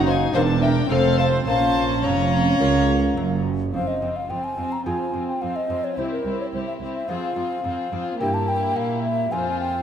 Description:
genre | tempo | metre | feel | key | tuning
classical, baroque-style concerto movement with solo episodes | 107 BPM | 4/4 | straight | Bb minor, F minor from 3.7 s | A4 = 443 Hz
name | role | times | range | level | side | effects
mellow hollow concert flute | melody | 0.0-9.8 s | Bb4 to Bb5 | -26 LUFS | left 2 dB | none
warm chamber violin section | melody | 0.0-9.8 s | F4 to Bb5 | -33 LUFS | left 5 dB | none
lute | accompaniment | 0.0-9.8 s | E2 to C5 | -31 LUFS | equal | none
rich chamber viola section | accompaniment | 0.0-9.8 s | Bb3 to Eb4 | -26 LUFS | left 1 dB | none
dark chamber cello section | bass | 0.0-9.8 s | C2 to Bb2 | -28 LUFS | right 4 dB | none
rich chamber double bass section | bass | 0.0-3.7 s | E1 to Db2 | -24 LUFS | right 5 dB | none
warm chamber violin section | second line | 0.1-9.8 s | C4 to Db5 | -30 LUFS | left 2 dB | none
room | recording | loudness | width
moderate concert hall reverb, RT60 2.0 s | none | -20 LUFS | side -8 dB against mid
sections
0.0-3.7 A section; 3.7-9.8 B section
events
none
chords
0.3 C7/E; 0.9 F; 1.5 Bbm; 3.7 Fm; 6.0 C; 7.1 Fm; 8.2 Edim/G; 9.3 Fm

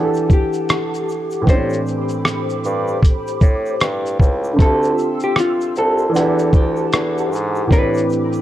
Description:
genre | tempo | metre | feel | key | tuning
lo-fi hip hop | 77 BPM | 4/4 | swing 59% on 16ths | unclear | A4 = 440 Hz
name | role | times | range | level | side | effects
archtop guitar, miked and amplified | melody | 0.0-8.4 s | F4 to C5 | -22 LUFS | left 1 dB | low-pass filter, tape echo
warm upright piano | accompaniment | 0.0-8.4 s | A2 to F#5 | -21 LUFS | right 1 dB | low-pass filter
hollow soft pad | sustained chords | 0.0-8.4 s | C4 to E6 | -26 LUFS | left 1 dB | ensemble chorus, low-pass filter
egg shaker | percussion | 0.1-8.4 s | none | -48 LUFS | left 4 dB | none
dusty soul sampler-style drum kit | drums | 0.2-8.4 s | hi-hat, kick drum, rim click, shaker | -15 LUFS | equal | none
warm bassoon | bass | 1.5-8.0 s | C2 to A2 | -21 LUFS | equal | none
room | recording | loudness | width
light reverb | cassette tape | -15 LUFS | side -13 dB against mid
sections
0.0-8.4 A section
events
break 0.0-1.5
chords
0.0 Em11; 1.5 Am11; 4.6 Dm11; 6.2 Em11; 7.7 Am11

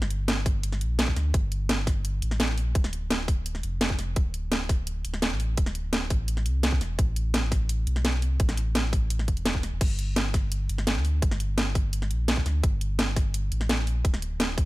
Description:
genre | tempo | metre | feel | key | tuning
liquid drum and bass | 170 BPM | 4/4 | straight | G dorian | A4 = 441 Hz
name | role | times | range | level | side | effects
sub bass with octave | bass | 0.0-14.7 s | D1 to D2 | -27 LUFS | equal | none
garage drum kit | drums | 0.0-14.6 s | crash cymbal, hi-hat, snare drum | -28 LUFS | equal | studio reverb
electronic kick drum | drums | 0.5-14.6 s | none | -24 LUFS | equal | studio reverb
room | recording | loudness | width
little or no reverb | none | -24 LUFS | side -19 dB against mid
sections
0.0-14.7 A section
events
none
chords
none

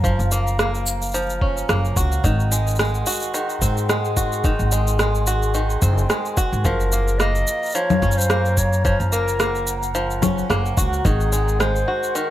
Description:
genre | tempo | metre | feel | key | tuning
folktronica | 109 BPM | 4/4 | swing 56% on 16ths | Gb lydian | A4 = 441 Hz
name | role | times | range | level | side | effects
warbly tape-like pad | sustained chords | 0.0-12.3 s | Ab4 to C6 | -29 LUFS | left 1 dB | chorus, built-in reverb
bluegrass banjo | arpeggios | 0.0-12.3 s | Eb3 to Gb4 | -25 LUFS | right 1 dB | vintage 12-bit sampler grit, tape echo
upright bass | bass | 0.0-11.8 s | Gb1 to Ab2 | -21 LUFS | equal | tube saturation
electronic cabasa, rim click and congas | drums | 0.0-12.3 s | none | -24 LUFS | equal | none
electronic kick drum | drums | 0.0-11.2 s | none | -22 LUFS | equal | none
mellow clarinet | melody | 6.6-12.3 s | Gb4 to Eb5 | -24 LUFS | left 1 dB | tape echo
room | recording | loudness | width
light reverb, studio reverb | none | -18 LUFS | side -13 dB against mid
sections
0.0-12.3 A section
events
none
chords
0.0 Gbmaj7; 2.2 Ab7; 6.6 Gbmaj7; 11.1 Ab7

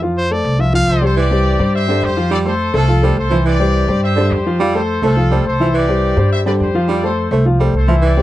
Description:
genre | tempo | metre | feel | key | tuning
latin | 210 BPM | 4/4 | straight | unclear | A4 = 440 Hz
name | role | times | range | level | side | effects
dark concert grand piano | accompaniment | 0.0-8.2 s | E3 to F5 | -17 LUFS | left 2 dB | none
upright bass | bass | 0.0-8.2 s | C2 to G2 | -16 LUFS | equal | none
brilliant trumpet | melody | 0.2-1.1 s | C5 to F5 | -19 LUFS | equal | none
clear trumpet section | melody | 0.9-8.2 s | F4 to E5 | -21 LUFS | left 2 dB | slapback echo
clear baritone saxophone | second line | 1.2-8.2 s | D3 to A3 | -20 LUFS | right 6 dB | none
room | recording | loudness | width
light reverb | dry, close 1970s-style studio recording | -12 LUFS | side -14 dB against mid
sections
0.0-1.2 A section; 1.2-8.2 B section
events
trumpet solo 0.0-1.2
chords
0.0 F; 1.2 Cadd9; 2.3 F; 3.5 Cadd9; 4.6 F; 5.7 Cadd9; 6.9 F

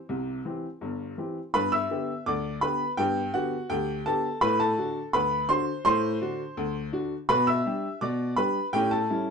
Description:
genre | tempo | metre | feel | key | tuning
ragtime piano | 83 BPM | 2/4 | straight | G major | A4 = 440 Hz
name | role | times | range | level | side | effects
clear upright piano | solo | 0.0-9.3 s | G1 to E6 | -25 LUFS | equal | none
room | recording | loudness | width
wet small room reverb, RT60 0.5 s | dark, warm production, nothing above 10.3 kHz | -25 LUFS | side -5 dB against mid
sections
0.0-1.5 A section; 1.5-9.3 B section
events
none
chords
0.0 C; 1.5 G; 4.4 D7; 7.3 G/B; 8.7 A7

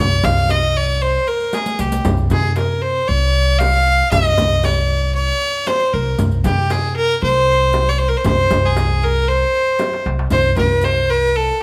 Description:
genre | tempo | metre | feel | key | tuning
Arabic maqam ensemble | 116 BPM | 4/4 | straight | C maqam bayati | A4 = 440 Hz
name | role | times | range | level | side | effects
bright fiddle | melody | 0.0-11.6 s | G4 to F5 | -19 LUFS | equal | none
upright bass | bass | 0.0-11.5 s | C2 to C3 | -21 LUFS | equal | none
darbuka | percussion | 0.1-11.4 s | none | -25 LUFS | equal | none
riq | percussion | 0.1-11.6 s | none | -30 LUFS | equal | none
frame drum | percussion | 0.2-11.0 s | none | -27 LUFS | equal | none
room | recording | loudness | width
light reverb | none | -16 LUFS | mono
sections
0.0-10.3 A section; 10.3-11.6 B section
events
drum fill 1.5-2.0, 9.8-10.3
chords
none

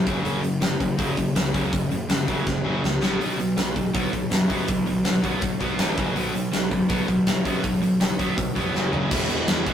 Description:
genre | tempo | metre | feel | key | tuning
punk rock | 162 BPM | 4/4 | straight | unclear | A4 = 440 Hz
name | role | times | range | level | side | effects
distorted electric guitar | riff | 0.0-9.7 s | E2 to B3 | -28 LUFS | left 5 dB | overdrive
overdriven electric guitar | riff | 0.0-9.7 s | E2 to B3 | -26 LUFS | right 3 dB | none
fuzz picked electric bass | bass | 0.0-9.7 s | E1 to F#2 | -29 LUFS | equal | overdrive
big rock drum kit | drums | 0.1-9.7 s | crash cymbal, hi-hat, kick drum, snare drum, toms | -25 LUFS | equal | none
room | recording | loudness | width
moderate studio reverb, RT60 0.6 s | rough rehearsal-room recording, tube saturation | -21 LUFS | side -9 dB against mid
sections
0.0-9.1 A section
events
drum fill 2.5-3.2, 8.7-9.1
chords
0.1 F#5; 3.0 B5; 5.8 A5; 6.0 F#5; 6.2 B5; 8.7 F#5; 9.1 E5

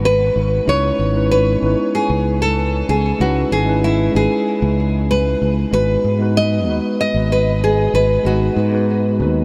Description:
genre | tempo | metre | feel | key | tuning
sunset chillout | 95 BPM | 4/4 | straight | C# minor | A4 = 443 Hz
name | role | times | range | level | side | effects
mellow tine electric piano | accompaniment | 0.0-9.4 s | G#3 to B4 | -22 LUFS | equal | delay
fretless electric bass | bass | 0.0-9.4 s | G#1 to G#2 | -21 LUFS | equal | none
nylon-string guitar | melody | 0.1-9.4 s | E4 to D#5 | -21 LUFS | equal | subtle chorus, delay
room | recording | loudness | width
moderate huge ambient reverb, RT60 9.1 s | dreamy mix soaked in reverb | -17 LUFS | mono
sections
0.0-9.4 A section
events
none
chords
0.0 G#m7; 0.7 C#m9; 5.7 G#m7

